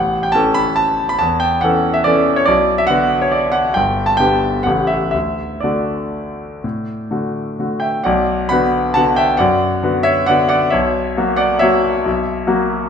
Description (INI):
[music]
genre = classical, piano waltz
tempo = 117-146 BPM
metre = 3/4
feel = rubato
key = D major, B minor from 8.1 s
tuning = A4 = 440 Hz
[part]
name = clear concert grand piano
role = solo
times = 0.0-12.9 s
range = G1 to B5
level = -14 LUFS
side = equal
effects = none
[sound]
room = wet recital hall reverb, RT60 1.4 s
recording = minimal, uncompressed stereo recording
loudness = -14 LUFS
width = side -7 dB against mid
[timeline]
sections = 0.0-8.1 A section; 8.1-12.9 B section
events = none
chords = 0.0 A; 2.5 Bm; 3.8 G; 4.7 A7; 5.1 D; 8.1 Bm; 10.7 F#7/B